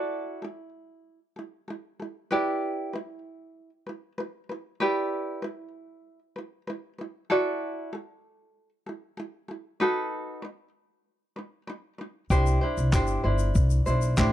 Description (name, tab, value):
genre	acoustic pop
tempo	96 BPM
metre	4/4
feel	straight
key	E minor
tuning	A4 = 438 Hz
part	tenor ukulele	accompaniment	0.0-14.3 s	D4 to D5	-28 LUFS	right 1 dB	none
part	upright bass	bass	12.3-14.3 s	G1 to C2	-24 LUFS	equal	none
part	dusty soul sampler-style drum kit	drums	12.3-14.3 s	handclaps, kick drum	-23 LUFS	left 1 dB	none
part	tube shaker	percussion	12.3-14.3 s	none	-43 LUFS	left 20 dB	none
room	studio reverb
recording	dry, close 1970s-style studio recording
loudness	-25 LUFS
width	side -12 dB against mid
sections	0.0-12.3 A section; 12.3-14.3 B section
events	none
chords	0.0 Dadd9/E; 2.3 Em7; 7.3 Dadd9/E; 9.8 B7; 12.3 Cadd9